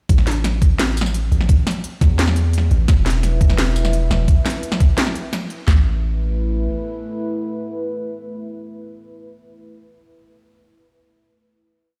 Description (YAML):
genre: half-time drum and bass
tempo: 172 BPM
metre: 4/4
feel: half-time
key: unclear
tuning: A4 = 439 Hz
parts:
  - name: long sustained 808-style bass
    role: bass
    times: 0.1-6.7 s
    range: E1 to E2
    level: -20 LUFS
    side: equal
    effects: none
  - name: drum and bass drum kit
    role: drums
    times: 0.1-5.6 s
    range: hi-hat, snare drum, tambourine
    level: -25 LUFS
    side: equal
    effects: none
  - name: trap drum kit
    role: drums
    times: 0.1-5.8 s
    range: handclaps, kick drum, snare drum, toms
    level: -16 LUFS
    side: equal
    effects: overdrive
  - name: deep dark ambient pad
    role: sustained chords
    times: 3.2-8.9 s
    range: A3 to E5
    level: -30 LUFS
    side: equal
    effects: chorus, built-in reverb, vintage 12-bit sampler grit, sidechain pumping
room: little or no reverb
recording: played on a big sound system in a bare room, stone room reverb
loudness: -18 LUFS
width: mono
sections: 0.1-5.7 drop; 5.7-8.5 final chord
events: drop 0.1-5.7; band accent 5.3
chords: 0.1 A5; 2.9 E5; 5.7 Asus2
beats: | 0.09 0.44 0.79 1.14 | 1.49 1.84 2.19 2.54 | 2.88 3.23 3.58 3.93 | 4.28 4.63 4.98 5.33 | 5.67 6.02 6.37 6.72 | 7.07 7.42 7.77 8.12